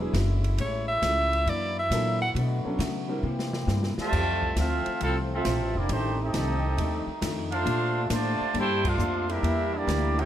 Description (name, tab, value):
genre	jazz, big band swing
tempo	136 BPM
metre	4/4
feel	swing 68% on 8ths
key	F mixolydian from 4.1 s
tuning	A4 = 443 Hz
part	vintage hollow-body jazz guitar	accompaniment	0.0-10.2 s	F2 to C5	-35 LUFS	left 5 dB	none
part	warm concert grand piano	accompaniment	0.0-3.2 s	F#3 to Bb4	-33 LUFS	equal	none
part	bright trombone section	sustained chords	0.0-10.3 s	C3 to G4	-37 LUFS	equal	none
part	upright bass	bass	0.0-10.3 s	E1 to C#3	-28 LUFS	equal	none
part	open jazz drum kit	drums	0.1-10.2 s	crash cymbal, hi-hat, kick drum, ride cymbal, snare drum	-36 LUFS	equal	none
part	edgy alto saxophone	melody	0.6-2.3 s	C#5 to F#5	-26 LUFS	right 1 dB	none
part	dark trumpet section	melody	4.0-10.3 s	A3 to A5	-29 LUFS	right 1 dB	none
part	clear trombone section	second line	4.0-10.3 s	C3 to G4	-31 LUFS	right 2 dB	none
room	light reverb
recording	dark, warm production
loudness	-24 LUFS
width	side -11 dB against mid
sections	0.0-4.1 A section; 4.1-10.3 B section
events	alto saxophone solo 0.0-4.1; drum fill 3.2-4.1; band accent 8.8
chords	0.0 E9; 0.6 Amaj7; 1.5 F#7alt; 2.4 Bm7; 3.2 C7; 4.1 Fmaj7; 5.9 F13; 7.7 Bbmaj9; 9.4 Em7b5